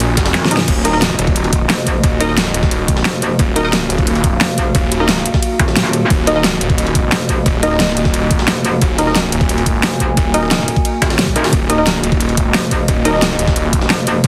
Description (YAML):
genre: dark technical drum and bass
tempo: 177 BPM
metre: 4/4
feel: straight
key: Eb minor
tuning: A4 = 435 Hz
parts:
  - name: dark analog pad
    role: sustained chords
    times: 0.0-14.3 s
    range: Bb3 to Ab5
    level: -24 LUFS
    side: equal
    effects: chorus, sidechain pumping
  - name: filtered dub chord stab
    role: stabs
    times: 0.0-14.3 s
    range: Eb4 to Eb5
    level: -22 LUFS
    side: equal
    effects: chorus, dub echo
  - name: snarling distorted saw bass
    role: bass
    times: 0.0-14.3 s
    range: Eb1 to Bb1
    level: -20 LUFS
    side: equal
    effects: distortion, tube saturation, sidechain pumping
  - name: dubstep drum kit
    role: drums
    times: 0.0-14.3 s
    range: crash cymbal, hi-hat, snare drum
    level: -20 LUFS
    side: equal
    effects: overdrive
  - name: jungle sampler-style drum kit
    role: drums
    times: 0.0-14.3 s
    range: hi-hat, ride cymbal, snare drum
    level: -27 LUFS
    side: equal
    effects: high-pass filter on cymbals, high-pass filter on snare, high-pass filter on hats, high-pass filter on room
  - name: electronic kick drum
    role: drums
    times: 0.2-14.3 s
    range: none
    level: -18 LUFS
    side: equal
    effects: overdrive
  - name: metallic wobble bass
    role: bass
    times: 0.3-14.2 s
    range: Eb1 to F1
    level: -19 LUFS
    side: equal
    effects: chorus
room: light reverb, digital ambience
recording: heavily compressed radio sound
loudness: -14 LUFS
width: mono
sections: 0.7-14.3 A section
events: drum fill 0.3-0.7; drop 0.7-14.3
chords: 0.0 Ebm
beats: 0.00 0.34 | 0.68 1.02 1.36 1.70 | 2.04 2.37 2.71 3.05 | 3.39 3.73 4.07 4.41 | 4.75 5.09 5.42 5.76 | 6.10 6.44 6.78 7.12 | 7.46 7.80 8.14 8.48 | 8.81 9.15 9.49 9.83 | 10.17 10.51 10.85 11.19 | 11.53 11.87 12.21 12.54 | 12.88 13.22 13.56 13.90 | 14.24